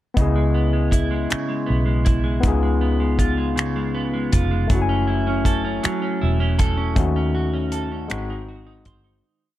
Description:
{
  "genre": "slow six-eight R&B",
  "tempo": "53 BPM (dotted quarters)",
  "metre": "6/8",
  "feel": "straight",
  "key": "C# minor",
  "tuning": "A4 = 440 Hz",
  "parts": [
    { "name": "overdriven tine electric piano", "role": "accompaniment", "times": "0.1-9.2 s", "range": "G#3 to G#5", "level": "-25 LUFS", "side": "left 5 dB", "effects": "none" },
    { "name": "clean electric guitar", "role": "second line", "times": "0.2-9.6 s", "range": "C#3 to B#4", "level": "-25 LUFS", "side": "right 4 dB", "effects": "lush chorus" },
    { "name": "vintage muted fingered electric bass", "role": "bass", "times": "0.2-9.2 s", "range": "E1 to D#2", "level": "-22 LUFS", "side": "equal", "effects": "none" },
    { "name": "damped 70s drum kit", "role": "drums", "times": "0.2-9.0 s", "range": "finger snaps, hi-hat, kick drum", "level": "-20 LUFS", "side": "equal", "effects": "none" }
  ],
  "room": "small room ambience",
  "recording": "dark, warm production",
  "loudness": "-18 LUFS",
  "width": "side -14 dB against mid",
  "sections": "0.2-9.2 verse",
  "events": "fade-out 7.0-9.2",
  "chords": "0.2 C#m7; 2.4 C#7; 4.7 F#m7; 7.0 D#m7b5; 8.1 G#7"
}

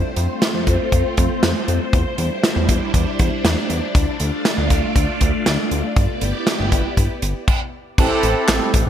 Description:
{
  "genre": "synth-pop",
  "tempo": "119 BPM",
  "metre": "4/4",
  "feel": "straight",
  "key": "A minor",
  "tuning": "A4 = 440 Hz",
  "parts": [
    { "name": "phased string machine", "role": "sustained chords", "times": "0.0-7.5 s", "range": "G3 to D5", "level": "-23 LUFS", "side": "left 1 dB", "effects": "ensemble chorus, phaser" },
    { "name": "chorused synth bass", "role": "bass", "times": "0.0-8.9 s", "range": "G1 to F2", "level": "-21 LUFS", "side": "equal", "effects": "none" },
    { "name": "modern studio drum kit", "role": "drums", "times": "0.2-8.9 s", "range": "crash cymbal, handclaps, hi-hat, kick drum, snare drum", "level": "-18 LUFS", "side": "equal", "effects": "gated reverb" },
    { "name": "mellow synth brass", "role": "accompaniment", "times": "8.0-8.7 s", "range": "C4 to A4", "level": "-18 LUFS", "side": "right 1 dB", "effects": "chorus" }
  ],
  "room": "moderate lush hall reverb, RT60 1.9 s, studio reverb",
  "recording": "bright 1980s-style digital production",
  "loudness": "-16 LUFS",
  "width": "side -10 dB against mid",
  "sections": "0.0-8.0 A section",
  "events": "none",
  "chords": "0.0 F; 1.9 Cadd9/E; 3.9 Dm; 6.0 G6; 8.0 Am7"
}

